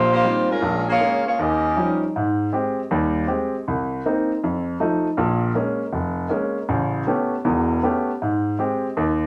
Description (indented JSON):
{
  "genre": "jazz",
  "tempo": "158 BPM",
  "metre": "4/4",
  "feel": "swing 66% on 8ths",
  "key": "Ab major",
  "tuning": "A4 = 442 Hz",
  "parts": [
    { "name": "mellow saxophone section", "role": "melody", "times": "0.0-2.0 s", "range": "Ab3 to Eb5", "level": "-22 LUFS", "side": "equal", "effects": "none" },
    { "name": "clear grand piano", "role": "accompaniment", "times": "0.0-9.3 s", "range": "E1 to G4", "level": "-23 LUFS", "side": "equal", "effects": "none" }
  ],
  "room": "wet studio reverb, RT60 0.6 s",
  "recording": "none",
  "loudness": "-22 LUFS",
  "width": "mono",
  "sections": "0.0-2.1 A section; 2.1-9.3 B section",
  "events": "none",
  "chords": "0.0 Eb69; 0.6 Bbm7; 1.4 Eb9; 2.1 Abmaj7; 3.7 Cm7; 4.4 F7; 5.2 Bbm7; 6.7 A9; 8.2 Abmaj7"
}